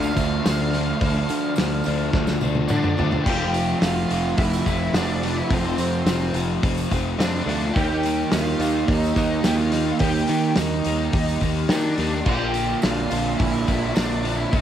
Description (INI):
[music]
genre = rock, shoegaze and dream pop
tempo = 107 BPM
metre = 4/4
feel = straight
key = F major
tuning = A4 = 440 Hz
[part]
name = octave-fuzz lead guitar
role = melody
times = 0.0-14.6 s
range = C4 to F5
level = -29 LUFS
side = right 1 dB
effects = distortion, cassette tape, analog delay
[part]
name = overdriven electric guitar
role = riff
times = 0.0-14.6 s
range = Bb2 to F4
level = -30 LUFS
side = left 1 dB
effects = cassette tape
[part]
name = overdriven semi-hollow guitar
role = riff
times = 0.0-14.6 s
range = F2 to G4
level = -28 LUFS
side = left 8 dB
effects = wide subtle chorus, cassette tape
[part]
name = raw garage guitar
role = riff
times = 0.0-14.6 s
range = F2 to G4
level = -26 LUFS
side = right 8 dB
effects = overdrive, reverse reverb, cassette tape
[part]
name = modern bright fingered electric bass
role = bass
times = 0.0-14.6 s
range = F1 to Eb3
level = -26 LUFS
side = equal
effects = none
[part]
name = tambourine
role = percussion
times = 0.0-14.6 s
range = none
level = -42 LUFS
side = right 12 dB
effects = none
[part]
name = loose indie drum kit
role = drums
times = 0.2-14.6 s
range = crash cymbal, hi-hat, kick drum, snare drum, toms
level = -25 LUFS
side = equal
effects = none
[sound]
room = little or no reverb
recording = home recording on cassette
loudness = -19 LUFS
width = side -10 dB against mid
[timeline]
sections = 0.0-3.3 A section; 3.3-14.6 A section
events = drum fill 2.1-3.3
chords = 0.0 Dm; 3.3 F; 7.8 Eb; 12.3 Bb